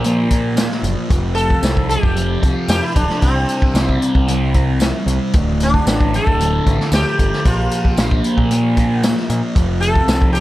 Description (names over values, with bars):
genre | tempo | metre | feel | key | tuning
psychedelic rock | 114 BPM | 4/4 | straight | unclear | A4 = 442 Hz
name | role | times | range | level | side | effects
thick fuzz guitar | riff | 0.0-10.4 s | D2 to C4 | -20 LUFS | equal | distortion, phaser
growling picked electric bass | bass | 0.0-10.4 s | D1 to Bb2 | -19 LUFS | equal | overdrive
vintage drum kit | drums | 0.0-10.4 s | hi-hat, kick drum, snare drum | -18 LUFS | equal | none
tambourine | percussion | 0.6-10.2 s | none | -31 LUFS | right 3 dB | none
sitar | melody | 1.3-10.4 s | C4 to A4 | -22 LUFS | equal | tape echo
room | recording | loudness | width
small room ambience | none | -14 LUFS | side -16 dB against mid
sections
0.0-10.4 A section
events
none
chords
0.0 Bb5; 1.1 F; 3.2 C5; 5.3 Dsus4; 7.5 Bb5; 9.6 F